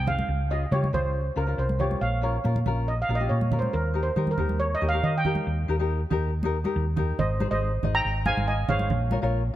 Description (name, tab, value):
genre	calypso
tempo	139 BPM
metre	4/4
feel	straight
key	Ab major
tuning	A4 = 440 Hz
part	steel pan	melody	0.0-9.5 s	Bb4 to Bb5	-28 LUFS	right 2 dB	none
part	hollow-body short-scale fingered electric bass	bass	0.0-9.5 s	Ab1 to Eb3	-26 LUFS	equal	none
part	tenor ukulele	accompaniment	0.1-9.4 s	C4 to Eb5	-32 LUFS	left 5 dB	none
part	congas	percussion	0.1-9.2 s	none	-32 LUFS	right 3 dB	none
room	light reverb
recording	none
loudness	-23 LUFS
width	side -13 dB against mid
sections	0.0-5.5 A section; 5.5-7.2 B section; 7.2-9.6 C section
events	steel pan solo 0.0-5.5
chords	0.3 Db; 2.0 Bbm; 3.7 Eb; 7.2 Ab; 8.9 Bbm